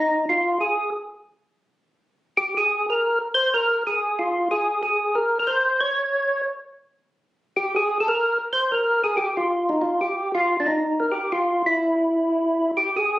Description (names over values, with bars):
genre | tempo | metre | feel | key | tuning
jazz | 184 BPM | 4/4 | swing 61% on 8ths | unclear | A4 = 440 Hz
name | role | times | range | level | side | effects
percussive tonewheel organ | solo | 0.0-13.2 s | D4 to Db5 | -20 LUFS | equal | overdrive, slow rotary speaker
room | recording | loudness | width
moderate studio reverb, RT60 0.6 s | recorded on a phone in the room, studio reverb, compression | -20 LUFS | side -16 dB against mid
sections
0.0-13.1 A section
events
none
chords
none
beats
| 0.07 0.39 0.71 1.04 | 1.37 1.69 2.02 2.34 | 2.67 2.99 3.32 3.65 | 3.97 4.30 4.62 4.95 | 5.27 5.60 5.93 6.25 | 6.58 6.90 7.23 7.55 | 7.88 8.20 8.53 8.85 | 9.18 9.50 9.83 10.15 | 10.48 10.80 11.12 11.45 | 11.77 12.10 12.42 12.74 | 13.07